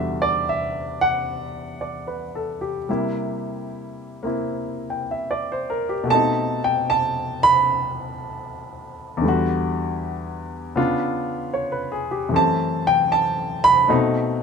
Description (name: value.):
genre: solo jazz.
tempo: 76 BPM.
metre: 4/4.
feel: swing 69% on 8ths, rubato.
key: E minor.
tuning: A4 = 440 Hz.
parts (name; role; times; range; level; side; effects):
warm baby grand piano; solo; 0.0-14.4 s; E2 to B5; -20 LUFS; equal; none.
room: light reverb.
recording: minimal, uncompressed stereo recording.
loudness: -20 LUFS.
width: side -6 dB against mid.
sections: 0.0-14.4 A section.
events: grand piano solo 0.0-14.4.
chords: 0.0 Em9; 2.9 C7; 6.1 B7b9; 9.2 Em9; 10.8 C#7b9; 12.3 F#m7b5; 13.9 B7b9.